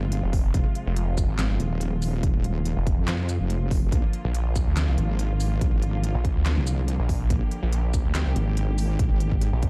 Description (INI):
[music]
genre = heavy wobble dubstep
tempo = 142 BPM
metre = 4/4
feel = swing 54% on 16ths, half-time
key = unclear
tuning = A4 = 441 Hz
[part]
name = bright studio string section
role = sustained chords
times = 0.0-9.7 s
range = C3 to G4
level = -37 LUFS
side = equal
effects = sidechain pumping, low-pass filter
[part]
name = wobble bass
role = bass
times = 0.0-9.5 s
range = Eb1 to F2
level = -27 LUFS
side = equal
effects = chorus, overdrive
[part]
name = dubstep drum kit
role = drums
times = 0.1-9.7 s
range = handclaps, hi-hat, shaker, snare drum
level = -36 LUFS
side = equal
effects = studio reverb
[part]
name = snarling distorted saw bass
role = bass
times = 0.2-9.7 s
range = F1 to D2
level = -26 LUFS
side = equal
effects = distortion, overdrive
[part]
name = electronic kick drum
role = drums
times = 0.3-9.7 s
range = none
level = -26 LUFS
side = equal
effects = studio reverb
[sound]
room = digital ambience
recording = dark, warm production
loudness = -24 LUFS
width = mono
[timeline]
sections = 0.0-9.7 A section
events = none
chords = 0.0 Fm; 3.9 Bb